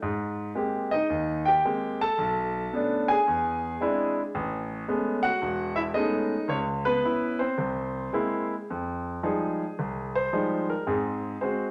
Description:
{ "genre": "solo jazz", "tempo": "111 BPM", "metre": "4/4", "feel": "swing 67% on 8ths, rubato", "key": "F minor from 8.7 s", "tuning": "A4 = 440 Hz", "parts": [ { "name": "clear concert grand piano", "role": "solo", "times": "0.0-11.7 s", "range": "E1 to A5", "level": "-28 LUFS", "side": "equal", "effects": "none" } ], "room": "wet studio reverb, RT60 0.9 s", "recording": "none", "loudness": "-28 LUFS", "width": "mono", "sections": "0.0-8.7 A section; 8.7-11.7 B section", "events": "grand piano solo 8.7-11.7", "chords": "0.0 Abmaj9; 2.2 Bm9; 3.3 Eaug7; 4.4 Amaj9; 6.5 Dbm7; 7.6 C7b13; 8.7 Fm9; 10.9 Ab7" }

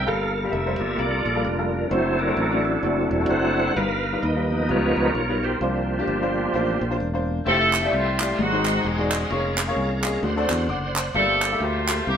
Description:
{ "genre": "uptempo gospel", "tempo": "130 BPM", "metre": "4/4", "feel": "swing 60% on 8ths", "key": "unclear", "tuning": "A4 = 440 Hz", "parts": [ { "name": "bright tonewheel organ", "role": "sustained chords", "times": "0.0-12.2 s", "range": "F3 to C6", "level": "-24 LUFS", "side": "right 1 dB", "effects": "slow rotary speaker, chorus vibrato" }, { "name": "fingered electric bass", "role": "bass", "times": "0.0-12.2 s", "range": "E1 to E2", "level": "-27 LUFS", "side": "equal", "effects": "none" }, { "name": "clear grand piano", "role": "accompaniment", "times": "0.1-12.1 s", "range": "G2 to D6", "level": "-26 LUFS", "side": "left 2 dB", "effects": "none" }, { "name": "warm horn section", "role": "melody", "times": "7.5-12.2 s", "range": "F3 to A4", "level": "-23 LUFS", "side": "equal", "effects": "none" }, { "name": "group handclap", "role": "percussion", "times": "7.7-12.0 s", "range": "none", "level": "-28 LUFS", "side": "right 2 dB", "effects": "none" } ], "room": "wet studio reverb, RT60 0.7 s", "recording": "band playing live in one room", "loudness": "-20 LUFS", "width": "side -8 dB against mid", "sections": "0.0-7.5 A section; 7.5-12.2 B section", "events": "tonewheel organ solo 0.0-7.5", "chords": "0.1 Gm9; 1.9 D7/F#; 3.8 G7alt; 5.6 C9sus4; 7.5 Fmaj9; 8.4 Ab7; 9.3 Db6/F; 10.2 D7; 11.2 Gm9" }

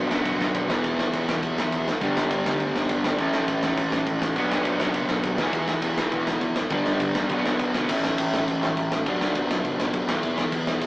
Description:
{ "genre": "punk rock", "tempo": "204 BPM", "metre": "4/4", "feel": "straight", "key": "B minor", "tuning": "A4 = 440 Hz", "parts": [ { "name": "crunchy overdriven guitar", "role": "riff", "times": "0.0-7.9 s", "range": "E2 to B3", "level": "-29 LUFS", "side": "right 1 dB", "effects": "none" }, { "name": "sludgy distorted guitar", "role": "riff", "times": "0.0-10.9 s", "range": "A2 to G#4", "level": "-24 LUFS", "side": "equal", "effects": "overdrive" }, { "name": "picked electric bass", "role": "bass", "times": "0.0-10.9 s", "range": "E1 to A2", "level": "-39 LUFS", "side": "equal", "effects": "none" }, { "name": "big rock drum kit", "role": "drums", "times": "0.1-10.9 s", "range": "crash cymbal, kick drum, snare drum", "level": "-27 LUFS", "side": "equal", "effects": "none" } ], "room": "moderate stone room reverb, RT60 1.1 s", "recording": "rough rehearsal-room recording, tube saturation, small speaker sound", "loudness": "-22 LUFS", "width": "side -22 dB against mid", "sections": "0.0-7.9 A section; 7.9-10.9 A section", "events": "none", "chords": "0.0 Bm; 0.7 E; 2.0 G; 3.2 A; 4.4 Bm; 5.4 E; 6.7 G; 7.3 Bm; 7.9 A; 9.1 Bm; 10.1 E" }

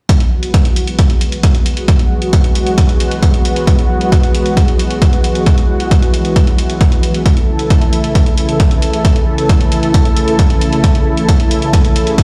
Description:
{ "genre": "uplifting trance", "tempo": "134 BPM", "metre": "4/4", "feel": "straight", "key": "E major", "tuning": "A4 = 440 Hz", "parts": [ { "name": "lush unison pad", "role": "sustained chords", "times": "0.1-12.2 s", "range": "C#3 to A4", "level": "-19 LUFS", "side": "equal", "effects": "chorus, sidechain pumping" }, { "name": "electronic hi-hat", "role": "drums", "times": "0.1-12.2 s", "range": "none", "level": "-26 LUFS", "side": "equal", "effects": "sidechain pumping on hats" }, { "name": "electronic kick drum", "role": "drums", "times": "0.1-12.2 s", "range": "none", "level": "-13 LUFS", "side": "equal", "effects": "none" } ], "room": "light reverb", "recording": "played on a big sound system in a bare room, stone room reverb", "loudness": "-12 LUFS", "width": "mono", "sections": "0.1-12.2 A section", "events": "none", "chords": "0.1 Eadd9; 7.3 A" }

